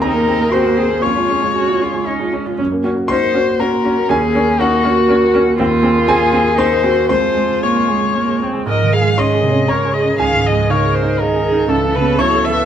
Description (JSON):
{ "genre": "neoclassical piano and strings", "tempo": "119 BPM", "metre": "3/4", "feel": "rubato", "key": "Db major", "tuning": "A4 = 442 Hz", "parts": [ { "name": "muted violin", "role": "melody", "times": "0.0-12.7 s", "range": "Gb4 to F5", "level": "-17 LUFS", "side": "left 5 dB", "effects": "none" }, { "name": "muted cello", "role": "second line", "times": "0.0-12.7 s", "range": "C3 to Ab4", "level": "-20 LUFS", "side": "right 3 dB", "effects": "none" }, { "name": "muted viola", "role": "accompaniment", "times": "0.0-12.7 s", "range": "Ab3 to Bb4", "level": "-21 LUFS", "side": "right 2 dB", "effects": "none" }, { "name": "warm concert grand piano", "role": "accompaniment", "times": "0.0-12.7 s", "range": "Db2 to Db6", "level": "-16 LUFS", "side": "right 2 dB", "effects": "none" } ], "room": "moderate stone room reverb, RT60 1.0 s", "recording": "band playing live in one room", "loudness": "-12 LUFS", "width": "side -9 dB against mid", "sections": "0.0-8.7 A section; 8.7-12.7 B section", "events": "none", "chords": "0.0 Abadd9/Eb; 1.0 Db/F; 2.6 Gb; 4.1 Ebm7; 5.6 Abadd9/Eb; 7.1 Db/F; 8.7 Absus4; 10.2 Dbadd9; 11.7 Aadd9/C#" }